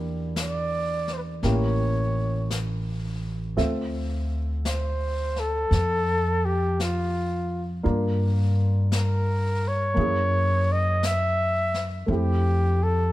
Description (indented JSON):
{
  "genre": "jazz ballad",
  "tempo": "56 BPM",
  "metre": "4/4",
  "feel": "swing 68% on 8ths",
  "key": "unclear",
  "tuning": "A4 = 441 Hz",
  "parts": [
    { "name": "warm baby grand piano", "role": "accompaniment", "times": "0.0-13.1 s", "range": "A3 to E5", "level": "-31 LUFS", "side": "right 1 dB", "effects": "none" },
    { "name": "upright bass", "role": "bass", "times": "0.0-13.1 s", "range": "A1 to G2", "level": "-24 LUFS", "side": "equal", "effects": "none" },
    { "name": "breathy flugelhorn", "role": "melody", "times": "0.4-13.1 s", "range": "F4 to Fb5", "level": "-26 LUFS", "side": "equal", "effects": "none" },
    { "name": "vintage brush drum kit", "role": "drums", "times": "0.4-13.1 s", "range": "brushed snare drum, hi-hat, snare drum", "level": "-36 LUFS", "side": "left 3 dB", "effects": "none" }
  ],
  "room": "little or no reverb",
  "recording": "none",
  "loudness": "-22 LUFS",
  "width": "side -16 dB against mid",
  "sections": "0.0-13.1 A section",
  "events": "none",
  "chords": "0.0 Em7b5; 1.4 A7b9; 3.6 Dm9; 7.8 Gm7; 10.0 Gb9; 12.1 Fmaj9"
}